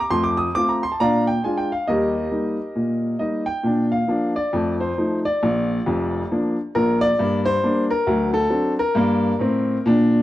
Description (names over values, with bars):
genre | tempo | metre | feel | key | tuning
jazz, stride piano | 136 BPM | 4/4 | swing 62% on 8ths | Eb major, Bb major from 3.6 s | A4 = 440 Hz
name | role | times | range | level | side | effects
warm grand piano | solo | 0.0-10.2 s | F1 to Eb6 | -18 LUFS | equal | none
room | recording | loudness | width
little or no reverb | dry, close 1970s-style studio recording | -18 LUFS | side -14 dB against mid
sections
0.0-3.6 A section; 3.6-10.2 B section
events
none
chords
0.1 F; 1.0 Bb7; 1.9 Eb; 3.6 Bb; 4.5 F7; 5.4 Bb; 7.2 Gm; 8.1 D7; 9.0 Gm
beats
| 0.11 0.55 0.99 1.43 | 1.87 2.31 2.76 3.20 | 3.64 4.08 4.53 4.97 | 5.41 5.85 6.30 6.74 | 7.18 7.63 8.07 8.51 | 8.96 9.40 9.85